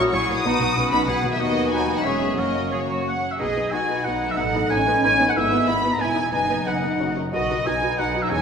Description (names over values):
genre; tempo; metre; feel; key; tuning
classical; 174-192 BPM; 3/4; rubato; B major; A4 = 437 Hz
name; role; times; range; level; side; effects
warm symphonic violin section; melody; 0.0-8.4 s; F#4 to D#6; -28 LUFS; left 3 dB; none
clear oboe; second line; 0.0-8.4 s; F#4 to B5; -24 LUFS; right 2 dB; none
flute section; second line; 0.0-3.2 s; B5 to D#6; -31 LUFS; equal; none
mellow clarinet; second line; 0.0-3.2 s; A#3 to F#4; -30 LUFS; left 1 dB; none
warm symphonic violin section; second line; 0.0-8.4 s; F#4 to B5; -28 LUFS; left 3 dB; none
dark studio viola section; accompaniment; 0.0-8.4 s; F#3 to G#4; -28 LUFS; right 2 dB; none
concert harp; arpeggios; 0.0-8.4 s; E2 to B5; -28 LUFS; left 5 dB; none
rich symphonic double bass section; bass; 0.0-8.4 s; E1 to E2; -32 LUFS; right 3 dB; none
warm symphonic cello section; bass; 0.0-8.4 s; D#2 to G#4; -29 LUFS; right 3 dB; none
room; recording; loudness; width
wet scoring stage reverb, RT60 1.6 s; none; -19 LUFS; side -6 dB against mid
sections
0.0-3.4 A section; 3.4-8.4 B section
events
none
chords
0.4 B; 1.4 B/D#; 2.0 C#m/E; 2.4 F#; 3.4 B; 4.4 B7/A; 5.3 E/G#; 6.0 Emaj7; 6.3 B/F#; 7.0 F#; 7.3 B